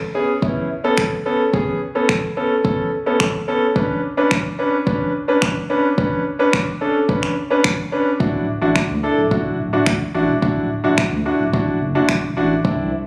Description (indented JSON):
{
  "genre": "dance-pop",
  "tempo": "108 BPM",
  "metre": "4/4",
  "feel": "straight",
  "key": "unclear",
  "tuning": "A4 = 438 Hz",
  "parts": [
    { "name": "clear concert grand piano", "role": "accompaniment", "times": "0.1-12.9 s", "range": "B3 to B4", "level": "-21 LUFS", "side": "equal", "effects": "sidechain pumping" },
    { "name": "deep house drum kit", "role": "drums", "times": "0.4-12.8 s", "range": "finger snaps, kick drum", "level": "-22 LUFS", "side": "equal", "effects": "none" },
    { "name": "saturated sub bass", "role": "bass", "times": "8.2-12.9 s", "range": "D1 to D2", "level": "-26 LUFS", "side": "equal", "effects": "sidechain pumping" }
  ],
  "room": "light reverb",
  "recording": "recorded on a phone in the room, club reverb",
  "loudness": "-19 LUFS",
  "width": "mono",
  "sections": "0.0-13.1 A section",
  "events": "none",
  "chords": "0.0 Aadd9; 3.8 Bmadd9; 8.2 Dadd9",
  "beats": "0.42 0.98 | 1.53 2.09 2.65 3.20 | 3.76 4.31 4.87 5.42 | 5.98 6.54 7.09 7.65 | 8.20 8.76 9.31 9.87 | 10.42 10.98 11.54 12.09 | 12.65"
}